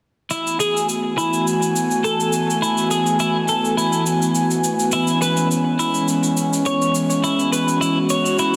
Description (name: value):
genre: sunset chillout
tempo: 104 BPM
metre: 4/4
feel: swing 54% on 16ths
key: F# minor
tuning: A4 = 440 Hz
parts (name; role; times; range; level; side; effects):
- airy breathy pad; sustained chords; 0.5-8.6 s; E3 to G#5; -21 LUFS; equal; chorus
- twelve-string electric guitar; arpeggios; 0.3-8.6 s; E4 to C#5; -24 LUFS; equal; low-pass filter, tape echo
- cabasa; drums; 0.3-8.5 s; none; -30 LUFS; equal; none
room: wet lush hall reverb, RT60 2.8 s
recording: dense, heavily limited modern master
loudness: -19 LUFS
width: mono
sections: 0.3-8.6 A section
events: none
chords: 0.3 F#m11; 4.9 C#m7